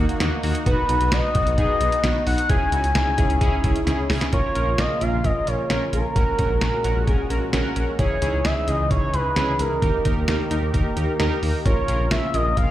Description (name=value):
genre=synth-pop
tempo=131 BPM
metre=4/4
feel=straight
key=unclear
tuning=A4 = 437 Hz
part: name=warm analog keys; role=accompaniment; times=0.0-12.7 s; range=A#3 to A#5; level=-27 LUFS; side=right 1 dB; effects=chorus
part: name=brassy analog pad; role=sustained chords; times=0.0-12.7 s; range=A#2 to G4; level=-30 LUFS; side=left 1 dB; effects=chorus
part: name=smooth synth bass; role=bass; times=0.0-12.7 s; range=A#1 to D#2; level=-24 LUFS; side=equal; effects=none
part: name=detuned 8-bit digital drum machine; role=drums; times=0.1-12.7 s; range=hi-hat, kick drum, snare drum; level=-24 LUFS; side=equal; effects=none
part: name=expressive synth lead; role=melody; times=0.7-12.7 s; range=A#4 to G#5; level=-24 LUFS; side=equal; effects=chorus
room=light reverb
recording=played on a big sound system in a bare room, large studio reverb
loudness=-19 LUFS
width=side -13 dB against mid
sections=0.0-4.3 A section; 4.3-12.7 B section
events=drum fill 3.9-4.3; synth keys fill 6.6-8.0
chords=0.0 D#m; 0.7 B; 2.5 C#madd9; 4.3 A#m; 6.2 F#add9/A#; 8.0 C#madd9; 9.8 D#; 11.7 A#m